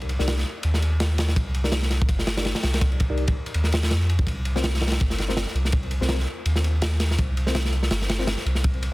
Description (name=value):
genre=drum and bass, jungle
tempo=165 BPM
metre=4/4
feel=swing 55% on 16ths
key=C minor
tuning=A4 = 439 Hz
part: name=soft dub sub bass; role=bass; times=0.0-8.9 s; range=G1 to F2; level=-23 LUFS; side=equal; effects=none
part: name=crunchy breakbeat drum kit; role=drums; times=0.0-8.9 s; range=kick drum, ride cymbal, snare drum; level=-24 LUFS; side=equal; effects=none
part: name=tine electric piano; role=stabs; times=0.2-8.3 s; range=C4 to D5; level=-34 LUFS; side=left 3 dB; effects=overdrive, fast stereo tremolo, vintage 12-bit sampler grit, dub echo
room=small room ambience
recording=dense, heavily limited modern master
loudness=-21 LUFS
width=side -20 dB against mid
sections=0.0-8.9 A section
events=none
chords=0.0 Cm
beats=0.27 0.64 1.00 | 1.36 1.73 2.09 2.45 | 2.82 3.18 3.54 3.91 | 4.27 4.64 5.00 5.36 | 5.73 6.09 6.45 6.82 | 7.18 7.54 7.91 8.27 | 8.64